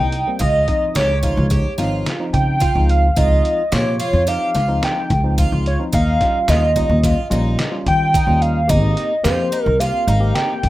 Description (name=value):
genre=progressive instrumental, band music in an uneven meter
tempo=108 BPM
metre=5/4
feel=straight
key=unclear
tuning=A4 = 438 Hz
part: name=hollow square lead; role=melody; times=0.0-10.7 s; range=C5 to G5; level=-19 LUFS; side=right 1 dB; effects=chorus
part: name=tine electric piano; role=accompaniment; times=0.0-10.6 s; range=C3 to G4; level=-26 LUFS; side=left 1 dB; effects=medium stereo tremolo
part: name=picked twelve-string acoustic guitar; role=arpeggios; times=0.0-10.5 s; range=Eb4 to G4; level=-27 LUFS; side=right 2 dB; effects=tape echo
part: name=upright bass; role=bass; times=0.0-10.7 s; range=Ab1 to Eb3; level=-17 LUFS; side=equal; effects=none
part: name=trip hop sampler-style drum kit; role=drums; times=0.1-10.7 s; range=hi-hat, kick drum, snare drum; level=-23 LUFS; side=equal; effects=none
room=little or no reverb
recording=rough home demo mix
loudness=-15 LUFS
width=side -16 dB against mid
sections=0.0-10.7 A section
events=none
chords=0.4 Dbmaj7; 5.9 Eb7; 8.7 Abmaj7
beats=| 0.40 0.96 1.51 2.06 2.62 | 3.17 3.72 4.27 4.83 5.38 | 5.93 6.49 7.04 7.59 8.14 | 8.70 9.25 9.80 10.36